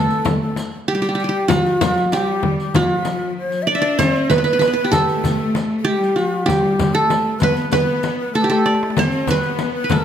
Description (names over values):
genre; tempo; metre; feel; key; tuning
Arabic maqam ensemble; 96 BPM; 4/4; straight; unclear; A4 = 438 Hz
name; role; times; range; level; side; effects
qanun; melody; 0.0-10.0 s; F#4-50c to E5; -19 LUFS; right 2 dB; none
breathy ney; second line; 0.0-10.0 s; E4 to E5; -26 LUFS; left 4 dB; none
rich symphonic cello section; second line; 0.0-10.0 s; F#3-50c to D4; -23 LUFS; left 2 dB; none
darbuka; percussion; 0.1-10.0 s; none; -25 LUFS; right 3 dB; none
riq; percussion; 0.1-10.0 s; none; -31 LUFS; equal; none
frame drum; percussion; 0.3-10.0 s; none; -23 LUFS; left 6 dB; none
room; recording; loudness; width
moderate recital hall reverb, RT60 1.6 s; none; -16 LUFS; side -9 dB against mid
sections
0.0-10.0 A section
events
drum fill 8.3-9.0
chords
none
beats
0.26 0.88 | 1.50 2.12 2.74 3.37 | 3.99 4.61 5.23 5.85 | 6.47 7.09 7.72 8.34 | 8.96 9.58